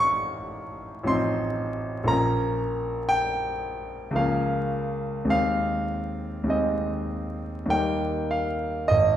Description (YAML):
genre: classical, romantic nocturne for solo piano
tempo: 49-60 BPM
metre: 3/4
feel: rubato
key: Ab major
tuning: A4 = 440 Hz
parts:
  - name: clear concert grand piano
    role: solo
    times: 0.0-9.2 s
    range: Ab1 to Db6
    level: -24 LUFS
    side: equal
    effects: none
room: wet recital hall reverb, RT60 1.4 s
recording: heard from further back in the room, vinyl crackle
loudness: -24 LUFS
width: side -11 dB against mid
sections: 0.0-8.9 A section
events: none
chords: 0.0 F7/A; 2.1 Bbm; 4.2 Bbm/Db; 5.3 Ab/Eb; 7.7 Eb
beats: 0.04 1.08 | 2.10 3.12 4.18 | 5.32 6.54 7.73 | 8.88